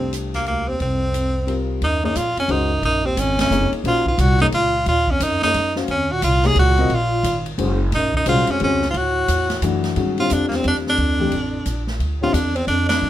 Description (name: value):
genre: modal jazz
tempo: 177 BPM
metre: 3/4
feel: swing 64% on 8ths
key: Eb dorian, G dorian from 10.0 s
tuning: A4 = 440 Hz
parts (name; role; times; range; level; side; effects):
- bright tenor saxophone; melody; 0.0-13.1 s; Bb3 to Ab4; -20 LUFS; equal; none
- breathy bass clarinet; second line; 0.0-13.1 s; D2 to C3; -26 LUFS; right 2 dB; none
- warm grand piano; accompaniment; 0.0-12.3 s; D3 to F5; -24 LUFS; left 4 dB; none
- upright bass; bass; 0.0-13.1 s; Gb1 to G2; -22 LUFS; equal; none
- open jazz drum kit; drums; 0.1-13.0 s; hi-hat, kick drum, ride cymbal, snare drum; -30 LUFS; equal; none
room: moderate club reverb, RT60 0.5 s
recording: minimal, uncompressed stereo recording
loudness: -17 LUFS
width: side -12 dB against mid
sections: 0.0-1.8 A section; 1.8-10.0 B section; 10.0-13.1 C section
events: band accent 3.3, 12.8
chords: 0.0 Bbadd9/C; 1.8 Ebm9; 8.9 D; 10.0 G7sus2